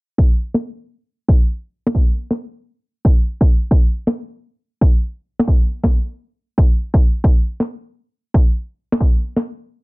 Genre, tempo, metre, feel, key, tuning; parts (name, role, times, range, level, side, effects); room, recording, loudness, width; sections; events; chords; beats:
UK garage, two-step garage; 136 BPM; 4/4; swing 63% on 16ths
electronic kick drum; drums; 0.2-9.1 s; -13 LUFS; equal
electronic snare drum; drums; 0.5-9.4 s; -19 LUFS; equal; soft clipping on snare
little or no reverb; dense, heavily limited modern master, low-pass filter; -15 LUFS; side -26 dB against mid
0.2-9.8 A section
filter sweep 0.2-9.8
| 0.18 0.62 1.06 1.51 | 1.95 2.39 2.83 3.27 | 3.71 4.15 4.59 5.04 | 5.48 5.92 6.36 6.80 | 7.24 7.68 8.12 8.56 | 9.01